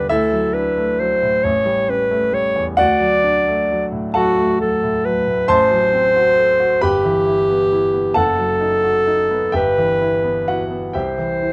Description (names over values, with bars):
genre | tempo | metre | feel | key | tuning
classical, romantic duo for clarinet and grand piano | 44 BPM (dotted quarters) | 6/8 | rubato | E minor from 5.5 s | A4 = 439 Hz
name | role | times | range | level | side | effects
warm clarinet | melody | 0.0-11.5 s | F#4 to D5 | -18 LUFS | equal | none
clear baby grand piano | accompaniment | 0.0-11.5 s | F#1 to C6 | -22 LUFS | equal | none
room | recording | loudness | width
light reverb | close, detailed microphones | -17 LUFS | mono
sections
0.0-11.5 A section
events
none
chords
0.1 D; 1.4 A7; 2.8 D; 5.5 F#dim/A; 6.8 Em/G; 8.2 B7/F#; 9.5 Em/G; 10.9 C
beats
| 0.08 1.44 | 2.80 4.16 | 5.48 6.82 | 8.16 9.54 | 10.94